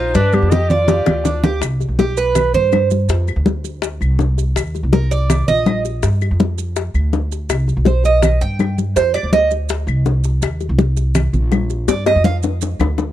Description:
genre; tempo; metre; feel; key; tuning
latin, Cuban son and guajira; 164 BPM; 4/4; straight; C harmonic minor; A4 = 440 Hz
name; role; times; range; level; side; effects
warm clarinet; melody; 0.0-1.4 s; G4 to Eb5; -19 LUFS; equal; none
warm studio violin section; second line; 0.0-1.4 s; B3 to G4; -27 LUFS; left 2 dB; none
Cuban tres; arpeggios; 0.0-9.5, 11.9-12.4 s; D4 to G5; -18 LUFS; right 5 dB; none
upright bass; bass; 0.0-13.1 s; Bb1 to G2; -17 LUFS; equal; none
bongos; percussion; 0.1-13.1 s; none; -22 LUFS; left 10 dB; none
congas; percussion; 0.1-13.1 s; none; -19 LUFS; equal; none
maracas; percussion; 0.1-13.1 s; none; -32 LUFS; right 19 dB; none
claves; percussion; 0.3-13.0 s; none; -31 LUFS; left 10 dB; none
room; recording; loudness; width
small room ambience; dry, close 1970s-style studio recording; -14 LUFS; side -12 dB against mid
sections
0.0-1.6 A section; 1.6-13.1 B section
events
drum fill 0.1-1.6, 11.9-13.1; Cuban tres solo 1.6-13.1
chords
0.1 G5; 1.6 C5; 3.1 F5; 4.6 Eb5; 6.0 G5; 7.5 Cm; 9.0 F5; 10.4 Eb5; 11.9 G5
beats
| 0.15 0.51 0.88 1.25 | 1.62 1.99 2.36 2.72 | 3.09 3.46 3.83 4.19 | 4.56 4.93 5.30 5.66 | 6.03 6.40 6.76 7.13 | 7.50 7.86 8.23 8.60 | 8.96 9.33 9.69 10.06 | 10.43 10.79 11.16 11.52 | 11.89 12.25 12.62 12.98

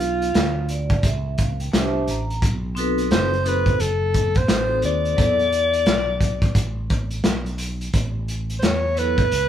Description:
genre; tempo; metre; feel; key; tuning
hip hop, jazz-hop; 87 BPM; 4/4; swing 63% on 16ths; unclear; A4 = 437 Hz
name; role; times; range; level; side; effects
breathy alto saxophone; melody; 0.0-9.5 s; F4 to D5; -22 LUFS; left 1 dB; none
fretless electric bass; bass; 0.0-9.5 s; F#1 to E2; -26 LUFS; equal; none
crunchy breakbeat drum kit; drums; 0.0-9.5 s; hi-hat, kick drum, snare drum; -22 LUFS; equal; none
vibraphone with medium hard mallets; accompaniment; 0.7-9.2 s; F#3 to Bb5; -26 LUFS; equal; none
room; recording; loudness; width
light reverb; band playing live in one room; -18 LUFS; side -10 dB against mid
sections
0.0-9.5 A section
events
vibraphone fill 0.3-2.4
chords
0.0 G7/B (rootless); 1.7 C9; 2.4 B7b9; 5.2 E7sus4; 7.9 Aadd9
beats
0.35 1.04 1.73 | 2.42 3.11 3.80 4.49 | 5.18 5.87 6.56 7.25 | 7.94 8.63 9.32

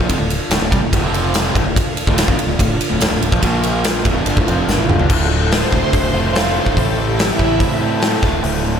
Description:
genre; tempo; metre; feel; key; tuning
classic rock; 144 BPM; 4/4; straight; D minor; A4 = 440 Hz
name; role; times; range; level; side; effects
string machine, full ensemble; sustained chords; 0.0-8.0 s; D4 to F5; -23 LUFS; equal; ensemble chorus
crunchy overdriven guitar; riff; 0.0-8.8 s; D2 to A4; -22 LUFS; right 9 dB; none
distorted electric guitar; riff; 0.0-8.8 s; D2 to A4; -22 LUFS; left 8 dB; distortion
growling fingered electric bass; bass; 0.0-8.8 s; D1 to A2; -22 LUFS; equal; overdrive
big rock drum kit; drums; 0.0-8.5 s; crash cymbal, hi-hat, kick drum, ride cymbal, snare drum, toms; -17 LUFS; equal; none
tambourine; percussion; 0.5-4.8 s; none; -36 LUFS; left 6 dB; none
room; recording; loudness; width
moderate lush hall reverb, RT60 1.8 s, studio reverb; big arena sound; -14 LUFS; side -8 dB against mid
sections
0.0-5.1 A section; 5.1-8.8 B section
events
drum fill 4.7-5.1; string machine solo 5.1-8.8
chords
0.0 Dm; 1.0 F5; 1.6 Dm; 3.4 Bb5; 4.0 Dm; 6.8 Am; 8.2 Dm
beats
| 0.10 0.51 0.93 1.34 | 1.76 2.18 2.59 3.01 | 3.42 3.84 4.26 4.68 | 5.09 5.51 5.93 6.35 | 6.77 7.18 7.60 8.02 | 8.44

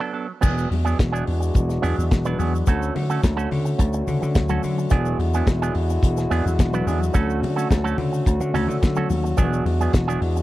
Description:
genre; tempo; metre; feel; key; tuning
disco; 107 BPM; 4/4; straight; unclear; A4 = 438 Hz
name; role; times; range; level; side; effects
electric guitar with an envelope filter; accompaniment; 0.0-10.4 s; F#3 to B4; -28 LUFS; right 6 dB; spring reverb
warm French horn section; sustained chords; 0.4-10.4 s; D3 to F#4; -27 LUFS; left 2 dB; none
vintage slap bass; bass; 0.4-10.4 s; E1 to D3; -22 LUFS; equal; none
damped 70s drum kit; drums; 0.4-10.4 s; crash cymbal, hi-hat, kick drum, snare drum; -19 LUFS; equal; none
congas; percussion; 0.4-10.1 s; none; -32 LUFS; left 6 dB; none
tube shaker; percussion; 0.4-10.4 s; none; -42 LUFS; left 20 dB; none
room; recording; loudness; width
little or no reverb; dry, close 1970s-style studio recording; -19 LUFS; side -16 dB against mid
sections
0.4-10.4 A section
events
break 0.0-0.4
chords
0.4 E9; 2.7 Dmaj7; 4.9 E9; 7.1 Dmaj7; 9.4 E9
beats
| 0.43 0.99 1.55 2.11 | 2.67 3.23 3.79 4.35 | 4.91 5.47 6.03 6.59 | 7.14 7.70 8.26 8.82 | 9.38 9.94

